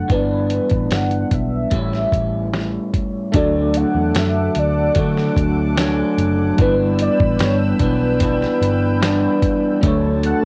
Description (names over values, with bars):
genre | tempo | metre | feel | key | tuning
indie pop, bedroom pop | 74 BPM | 4/4 | straight | D major | A4 = 442 Hz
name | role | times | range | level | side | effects
warm velvety synth lead | melody | 0.0-10.4 s | B4 to F#5 | -26 LUFS | equal | subtle chorus, cassette tape, tape echo
electric guitar through a small old amp | accompaniment | 0.0-10.4 s | G2 to E4 | -22 LUFS | equal | subtle chorus, warbly pitch drift, cassette tape
vintage muted picked electric bass | bass | 0.1-10.3 s | F#1 to D3 | -24 LUFS | equal | none
dusty soul sampler-style drum kit | drums | 0.1-10.4 s | hi-hat, kick drum, snare drum | -23 LUFS | equal | cassette tape
barky tine electric piano | accompaniment | 3.3-10.4 s | F#3 to B4 | -27 LUFS | equal | overdrive, fast tremolo, cassette tape
lush unison pad | sustained chords | 3.3-10.4 s | A4 to E6 | -31 LUFS | equal | chorus, cassette tape
room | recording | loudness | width
moderate studio reverb, RT60 0.5 s | home recording on cassette | -18 LUFS | mono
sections
0.0-3.3 A section; 3.3-10.4 B section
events
none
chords
0.1 G6; 1.7 A7; 3.3 Dmaj7; 6.6 G6; 9.8 Dmaj7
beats
| 0.10 0.91 1.72 2.53 | 3.34 4.15 4.96 5.78 | 6.59 7.40 8.21 9.02 | 9.83